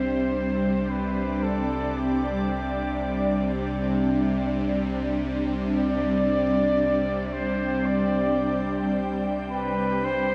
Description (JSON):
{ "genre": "ambient", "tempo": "free time", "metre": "none", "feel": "none", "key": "unclear", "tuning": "A4 = 441 Hz", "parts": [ { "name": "warm flugelhorn", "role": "melody", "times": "0.0-10.3 s", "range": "G4 to D5", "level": "-31 LUFS", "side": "equal", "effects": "tape echo" }, { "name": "ethereal airy pad", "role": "sustained chords", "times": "0.0-10.3 s", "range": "G3 to G5", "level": "-28 LUFS", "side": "equal", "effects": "ensemble chorus, built-in reverb, phaser" }, { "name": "warm sub bass", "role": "bass", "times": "0.0-10.3 s", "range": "C2", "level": "-39 LUFS", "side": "equal", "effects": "none" }, { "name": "bowed-like drone", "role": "drone", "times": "0.0-10.3 s", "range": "C3 to G3", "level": "-34 LUFS", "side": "equal", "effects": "built-in reverb" } ], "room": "wet huge ambient reverb, RT60 7.7 s", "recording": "in a vast, echoing space", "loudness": "-25 LUFS", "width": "mono", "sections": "0.0-10.3 A section", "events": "fade-out on sub bass 0.0-10.3", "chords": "0.0 Csus2", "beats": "free time" }